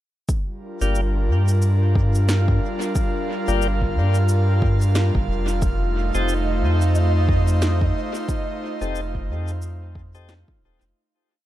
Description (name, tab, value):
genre	ambient dub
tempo	90 BPM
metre	4/4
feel	swing 58% on 16ths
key	G minor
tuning	A4 = 438 Hz
part	airy breathy pad	sustained chords	0.3-11.0 s	G3 to F5	-26 LUFS	equal	chorus
part	electronic cabasa and snare drum	drums	0.3-10.9 s	none	-31 LUFS	equal	dub echo
part	electronic kick drum	drums	0.3-10.6 s	none	-24 LUFS	equal	none
part	tonewheel organ	stabs	0.8-10.3 s	Bb3 to A4	-30 LUFS	left 5 dB	slow rotary speaker, dub echo
part	soft dub sub bass	bass	0.8-10.9 s	Eb1 to G2	-19 LUFS	equal	none
part	bubbling stepped-filter texture	texture	6.3-11.0 s	Eb5	-32 LUFS	right 3 dB	chorus, built-in reverb
room	digital ambience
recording	echo-heavy mix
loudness	-18 LUFS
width	side -14 dB against mid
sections	0.3-11.0 groove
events	fade-out 7.4-11.0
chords	0.3 Gm7; 5.6 F7